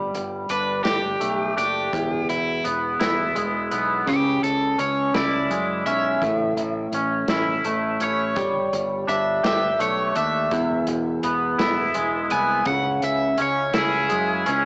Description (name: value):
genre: indie rock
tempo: 56 BPM (dotted quarters)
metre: 6/8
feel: straight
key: unclear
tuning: A4 = 441 Hz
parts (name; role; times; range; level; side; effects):
- twangy electric guitar; riff; 0.0-14.7 s; E2 to G4; -25 LUFS; equal; analog chorus, cassette tape
- modern bright fingered electric bass; bass; 0.0-14.7 s; E1 to F#2; -36 LUFS; equal; tube saturation
- vintage drum kit; drums; 0.1-14.6 s; hi-hat, kick drum, snare drum; -32 LUFS; equal; cassette tape
- overdriven semi-hollow guitar; melody; 0.5-14.7 s; E4 to G#5; -26 LUFS; equal; cassette tape
room: light reverb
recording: home recording on cassette, small speaker sound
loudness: -23 LUFS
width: mono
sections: 0.0-14.7 A section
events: overdriven electric guitar solo 0.0-14.7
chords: 0.0 Gsus2; 1.9 E; 4.1 C#m; 6.2 A; 8.4 Gsus2; 10.5 E; 12.7 C#m